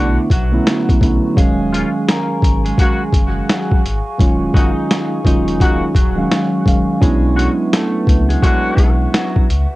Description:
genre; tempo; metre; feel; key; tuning
hip hop, boom-bap hip-hop; 85 BPM; 4/4; swing 60% on 16ths; Eb minor; A4 = 441 Hz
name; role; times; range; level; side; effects
electric guitar at the edge of break-up; melody; 0.0-9.5 s; F#3 to Eb5; -23 LUFS; equal; high-pass filter, low-pass filter, cassette tape, tape echo
mellow tine electric piano; accompaniment; 0.0-9.5 s; D3 to F5; -18 LUFS; right 2 dB; high-pass filter, low-pass filter
dark analog pad; sustained chords; 0.0-9.8 s; Ab4 to Db6; -28 LUFS; equal; chorus, phaser, high-pass filter, low-pass filter
warm horn section; stabs; 0.0-8.9 s; Db3 to F#4; -23 LUFS; left 2 dB; high-pass filter, low-pass filter, tape echo
sub bass with octave; bass; 0.0-9.7 s; Eb1 to C#2; -19 LUFS; equal; none
boom bap sampler-style drum kit; drums; 0.3-9.7 s; hi-hat, kick drum, snare drum; -15 LUFS; equal; vintage 12-bit sampler grit, cassette tape
room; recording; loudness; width
little or no reverb; home recording on cassette; -12 LUFS; side -18 dB against mid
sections
0.0-9.8 A section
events
none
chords
0.0 Bm11; 1.4 Ebm11; 7.0 Bm11

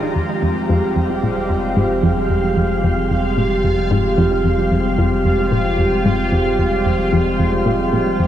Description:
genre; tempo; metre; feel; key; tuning
ambient, sequencer-driven space music; 112 BPM; 4/4; straight; F minor; A4 = 436 Hz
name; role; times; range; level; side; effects
sweeping resonant pad; sustained chords; 0.0-8.3 s; Eb3 to G4; -18 LUFS; right 1 dB; chorus
analog pluck; riff; 0.0-8.3 s; F2 to Bb2; -19 LUFS; equal; chorus, tape echo
round analog bass; bass; 0.0-8.3 s; F1; -25 LUFS; equal; none
bubbling stepped-filter texture; texture; 0.0-8.3 s; F4 to Bb5; -24 LUFS; left 1 dB; chorus, built-in reverb
room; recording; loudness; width
moderate shimmer reverb, RT60 6.5 s; none; -15 LUFS; side -11 dB against mid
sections
0.2-8.3 A section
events
filter sweep on synth arpeggio sound 0.2-8.3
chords
0.2 Fmadd9

